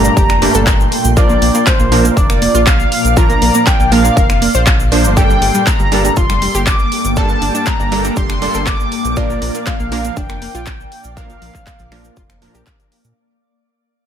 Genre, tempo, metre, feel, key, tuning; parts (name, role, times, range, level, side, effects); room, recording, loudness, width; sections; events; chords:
progressive house; 120 BPM; 4/4; straight; A4 = 439 Hz
warm velvety synth lead; melody; 0.0-12.6 s; C5 to D6; -18 LUFS; left 1 dB; chorus
shimmering ambient pad; sustained chords; 0.0-13.1 s; Bb2 to D6; -22 LUFS; equal; chorus, built-in reverb, sidechain pumping
analog pluck; arpeggios; 0.0-13.1 s; F3 to C5; -20 LUFS; right 1 dB; chorus, sidechain pumping, ping-pong delay
supersaw stab; stabs; 0.0-13.1 s; G2 to C5; -19 LUFS; right 3 dB; wide subtle chorus, sidechain pumping, ping-pong delay
round analog bass; bass; 0.0-13.1 s; F1 to Bb2; -18 LUFS; equal; sidechain pumping
big-room dance drum kit; drums; 0.0-13.1 s; finger snaps, handclaps, hi-hat; -20 LUFS; equal; overdrive, studio reverb
tube shaker; percussion; 0.0-13.1 s; -26 LUFS; right 2 dB
electronic kick drum; drums; 0.2-12.8 s; -14 LUFS; equal; overdrive, studio reverb
light reverb, digital ambience; -10 LUFS; side -9 dB against mid
0.0-13.2 A section
drop 0.0-13.2; fade-out 5.2-13.2
0.0 Gmadd9; 1.2 Bb; 5.2 Gmadd9; 9.2 Bb